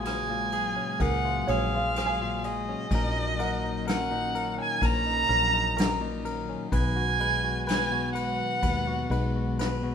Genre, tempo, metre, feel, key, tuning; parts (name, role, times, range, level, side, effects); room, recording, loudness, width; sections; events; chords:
acoustic folk-pop ballad; 63 BPM; 4/4; straight; G# dorian; A4 = 438 Hz
direct-recorded clean electric guitar; accompaniment; 0.0-9.9 s; A#2 to B4; -32 LUFS; left 3 dB
airy breathy pad; sustained chords; 0.0-9.9 s; C#3 to C#4; -37 LUFS; left 2 dB; chorus
woody fretless electric bass; bass; 0.0-9.9 s; A#1 to D#2; -31 LUFS; equal
rich violin; melody; 0.1-9.5 s; D#5 to A#5; -28 LUFS; right 3 dB
soft brush drum kit; drums; 0.1-9.8 s; kick drum, ride cymbal, rim click, snare drum; -33 LUFS; left 1 dB
felt-muted upright piano; arpeggios; 1.0-7.2 s; A#4 to A#5; -34 LUFS; right 5 dB
light reverb; minimal, uncompressed stereo recording; -25 LUFS; side -7 dB against mid
0.0-9.9 A section
0.0 F#maj9/A#; 2.9 D#m7/A#; 6.7 G#m7/B